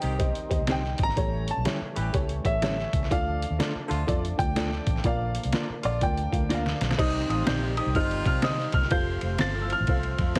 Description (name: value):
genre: uptempo 1960s-style soul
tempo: 124 BPM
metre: 4/4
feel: swing 63% on 8ths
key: C dorian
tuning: A4 = 440 Hz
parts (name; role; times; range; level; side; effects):
- warm baby grand piano; melody; 0.0-10.4 s; D5 to A6; -33 LUFS; equal; none
- warm horn section; second line; 0.0-8.7 s; C3 to G4; -38 LUFS; equal; none
- dark upright piano; accompaniment; 0.0-10.4 s; A2 to F5; -36 LUFS; equal; none
- overdriven tonewheel organ; sustained chords; 0.0-10.4 s; D3 to F4; -42 LUFS; equal; lush chorus
- vintage muted fingered electric bass; bass; 0.0-10.4 s; F1 to C3; -32 LUFS; equal; none
- trip hop sampler-style drum kit; drums; 0.0-10.4 s; crash cymbal, hi-hat, kick drum, ride cymbal, snare drum; -31 LUFS; equal; none
- mellow electric guitar; stabs; 0.7-10.4 s; G3 to C5; -34 LUFS; equal; none
- vibraphone with hard mallets; second line; 7.0-10.4 s; Eb4 to A4; -39 LUFS; equal; none
room: studio reverb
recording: heavily compressed radio sound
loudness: -27 LUFS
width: mono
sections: 0.0-7.0 A section; 7.0-10.4 B section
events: grand piano solo 0.0-7.0; drum fill 6.5-7.0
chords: 0.0 Cm; 1.2 A7; 3.1 Dm; 5.0 Bb; 7.0 Cm; 8.9 F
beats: 0.20 0.68 | 1.17 1.65 2.14 2.62 | 3.11 3.59 4.08 4.56 | 5.05 5.53 6.01 6.50 | 6.98 7.47 7.95 8.44 | 8.92 9.40 9.88 10.37